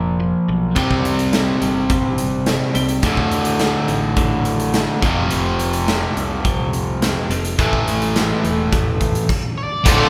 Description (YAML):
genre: quiet-loud alternative rock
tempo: 106 BPM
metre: 4/4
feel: straight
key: unclear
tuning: A4 = 439 Hz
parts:
  - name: clean electric guitar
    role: arpeggios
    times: 0.0-9.3 s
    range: D2 to C4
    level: -31 LUFS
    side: equal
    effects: none
  - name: crunchy overdriven guitar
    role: riff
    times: 0.0-10.1 s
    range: D2 to F4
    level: -21 LUFS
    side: equal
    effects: none
  - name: picked electric bass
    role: bass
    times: 0.0-10.1 s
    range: D1 to D2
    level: -28 LUFS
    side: equal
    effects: none
  - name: big rock drum kit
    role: drums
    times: 0.8-10.0 s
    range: crash cymbal, hi-hat, kick drum, snare drum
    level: -23 LUFS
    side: equal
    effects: none
  - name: octave-fuzz lead guitar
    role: melody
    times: 9.6-10.1 s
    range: D5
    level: -25 LUFS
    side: equal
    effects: distortion
  - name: thick fuzz guitar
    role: riff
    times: 9.8-10.1 s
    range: D2 to D3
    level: -19 LUFS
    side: equal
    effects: distortion
  - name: string machine, violas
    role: sustained chords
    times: 9.9-10.1 s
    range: A4 to D6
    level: -25 LUFS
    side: equal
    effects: ensemble chorus
room: moderate large studio reverb, RT60 1.2 s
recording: band playing live in one room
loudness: -18 LUFS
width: mono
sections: 0.0-9.9 A section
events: stop 9.3-9.9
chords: 0.0 Bb5; 0.8 C5; 3.0 D5; 5.0 F5; 7.6 A5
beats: 0.19 | 0.76 1.33 1.89 2.46 | 3.03 3.60 4.16 4.73 | 5.30 5.87 6.44 7.01 | 7.58 8.15 8.72 9.29 | 9.86